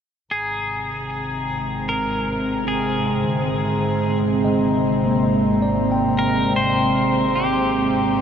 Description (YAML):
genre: ambient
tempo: 77 BPM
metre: 3/4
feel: straight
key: Ab lydian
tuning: A4 = 440 Hz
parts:
  - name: pedal steel guitar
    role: melody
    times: 0.3-8.2 s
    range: G4 to C5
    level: -24 LUFS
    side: left 1 dB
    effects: tape echo
  - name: evolving wavetable pad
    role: sustained chords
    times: 0.3-8.2 s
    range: C3 to G5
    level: -22 LUFS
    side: right 2 dB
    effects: chorus, built-in reverb
  - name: warm studio double bass section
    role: bass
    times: 0.3-8.2 s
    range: Ab1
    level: -28 LUFS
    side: equal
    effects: none
  - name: organ-like drone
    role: drone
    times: 1.5-8.2 s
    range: C3 to C4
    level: -28 LUFS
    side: equal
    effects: ensemble chorus, built-in reverb
  - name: glass harmonica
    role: texture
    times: 0.3-8.2 s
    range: Bb5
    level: -30 LUFS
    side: left 5 dB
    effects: none
  - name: tine electric piano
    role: arpeggios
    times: 2.7-8.2 s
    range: D3 to G5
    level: -23 LUFS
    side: left 1 dB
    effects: medium stereo tremolo, tape echo
room: wet huge ambient reverb, RT60 7.5 s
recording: nothing above 7.5 kHz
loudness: -18 LUFS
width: side -8 dB against mid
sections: 0.3-8.2 A section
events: none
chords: 0.3 Abmaj7